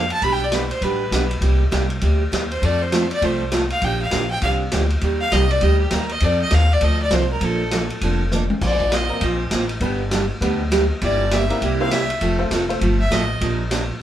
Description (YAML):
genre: country, western swing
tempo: 200 BPM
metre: 4/4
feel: swing 62% on 8ths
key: Bb major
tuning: A4 = 440 Hz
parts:
  - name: clear fiddle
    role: second line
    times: 0.0-13.4 s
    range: G4 to B5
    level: -23 LUFS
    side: left 1 dB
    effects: none
  - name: picked steel-string acoustic guitar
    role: accompaniment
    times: 0.0-13.8 s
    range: B2 to C5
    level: -23 LUFS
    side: right 3 dB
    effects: none
  - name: upright bass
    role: bass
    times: 0.0-13.9 s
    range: F1 to F2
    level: -21 LUFS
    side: equal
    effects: none
  - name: vintage drum kit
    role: drums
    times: 0.1-13.8 s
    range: crash cymbal, hi-hat, kick drum, ride cymbal, snare drum, toms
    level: -26 LUFS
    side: left 1 dB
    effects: none
  - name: tack piano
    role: accompaniment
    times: 9.1-12.8 s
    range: F3 to C5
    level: -26 LUFS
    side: left 1 dB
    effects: none
room: moderate studio reverb, RT60 0.5 s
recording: band playing live in one room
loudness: -17 LUFS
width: side -11 dB against mid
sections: 0.0-14.0 A section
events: fiddle solo 0.0-14.0; drum fill 8.3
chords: 0.2 G/B; 1.4 Cm7; 2.6 F; 3.8 Bb6; 5.0 Eb; 6.2 F7; 7.4 Bbmaj7; 8.6 Bbsus2; 9.8 G; 11.0 C7/G; 12.2 F; 13.4 Bbadd9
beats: | 0.22 0.52 0.82 1.12 | 1.42 1.72 2.02 2.32 | 2.62 2.92 3.22 3.52 | 3.82 4.12 4.42 4.72 | 5.02 5.32 5.62 5.92 | 6.22 6.52 6.82 7.12 | 7.42 7.72 8.02 8.32 | 8.62 8.91 9.21 9.52 | 9.81 10.12 10.41 10.71 | 11.01 11.31 11.61 11.91 | 12.21 12.51 12.81 13.11 | 13.41 13.71